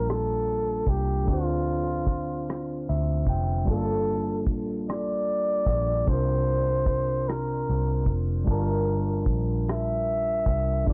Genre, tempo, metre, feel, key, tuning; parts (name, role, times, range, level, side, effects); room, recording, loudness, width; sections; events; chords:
slow six-eight R&B; 50 BPM (dotted quarters); 6/8; straight; G dorian; A4 = 439 Hz
breathy flugelhorn; melody; 0.0-10.9 s; F4 to E5; -31 LUFS; equal; tape echo
overdriven tine electric piano; accompaniment; 0.0-10.9 s; C3 to A5; -32 LUFS; equal
vintage muted fingered electric bass; bass; 0.0-10.9 s; F1 to D2; -30 LUFS; equal; tube saturation
damped 70s drum kit; drums; 0.1-10.9 s; hi-hat, kick drum, rim click; -29 LUFS; equal; soft clipping on snare
light reverb; blown-out, overdriven recording, overdrive, low-pass filter; -26 LUFS; mono
0.0-10.9 A section
filter sweep 0.0-10.9; tine electric piano fill 2.5-3.7
0.0 Gm9; 1.3 Dm7; 3.7 Gm9; 6.1 C9sus4; 8.5 Gm9